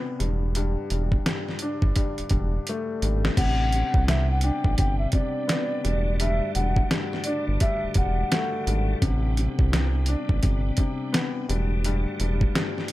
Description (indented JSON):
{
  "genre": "hip hop, boom-bap hip-hop",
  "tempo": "85 BPM",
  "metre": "4/4",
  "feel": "swing 63% on 16ths",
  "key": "A dorian",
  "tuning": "A4 = 444 Hz",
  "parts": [
    { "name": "warm baby grand piano", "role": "accompaniment", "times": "0.0-12.9 s", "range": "G2 to D4", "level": "-30 LUFS", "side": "left 3 dB", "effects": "cassette tape, high-pass filter, low-pass filter, tape echo" },
    { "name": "round analog bass", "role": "bass", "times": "0.2-12.5 s", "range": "E1 to C2", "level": "-24 LUFS", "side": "equal", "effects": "none" },
    { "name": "dusty soul sampler-style drum kit", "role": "drums", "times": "0.2-12.9 s", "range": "crash cymbal, hi-hat, kick drum, snare drum", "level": "-24 LUFS", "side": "equal", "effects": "overdrive" },
    { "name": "breathy mellow concert flute", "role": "melody", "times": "3.4-9.0 s", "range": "D5 to G5", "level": "-29 LUFS", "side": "equal", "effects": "high-pass filter, low-pass filter, tape echo" },
    { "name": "tonewheel organ", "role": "sustained chords", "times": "3.4-12.9 s", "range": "C3 to F#4", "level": "-36 LUFS", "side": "right 1 dB", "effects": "chorus vibrato, slow rotary speaker, high-pass filter, low-pass filter" }
  ],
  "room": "little or no reverb",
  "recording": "echo-heavy mix",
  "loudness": "-22 LUFS",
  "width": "side -16 dB against mid",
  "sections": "0.0-3.4 A section; 3.4-12.9 B section",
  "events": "drum fill 2.7-3.4",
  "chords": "0.2 Em7; 3.4 Am11; 5.8 Em11; 9.0 Am11; 11.5 Em11"
}